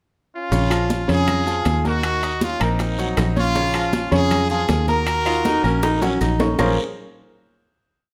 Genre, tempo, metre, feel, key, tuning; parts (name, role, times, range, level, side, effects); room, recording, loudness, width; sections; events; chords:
latin, salsa; 158 BPM; 4/4; straight; Bb minor; A4 = 439 Hz
brilliant horn section; melody; 0.4-6.2 s; C4 to Bb4; -25 LUFS; equal
bright grand piano; accompaniment; 0.5-6.8 s; Db3 to Eb6; -26 LUFS; equal
fingered electric bass; bass; 0.5-6.8 s; Bb1 to F2; -25 LUFS; equal
bongos; percussion; 0.5-6.7 s; -32 LUFS; equal
congas; percussion; 0.5-6.7 s; -30 LUFS; equal
guiro; percussion; 0.5-6.7 s; -40 LUFS; equal
maracas; percussion; 0.5-6.7 s; -43 LUFS; equal
claves; percussion; 0.7-6.7 s; -37 LUFS; equal
timbales; percussion; 0.7-6.7 s; -32 LUFS; equal
growling baritone saxophone; second line; 5.3-6.8 s; Db4 to F4; -25 LUFS; equal
moderate large studio reverb, RT60 1.1 s; -20 LUFS; mono
0.0-0.5 pickup bar; 0.5-6.6 montuno (vamp); 6.6-8.1 final chord
drum fill 5.5-6.6
0.0 N.C.; 0.5 Bbm7; 2.0 Ebm7; 3.6 Bbm7; 5.1 Ebm7; 6.6 Bbm9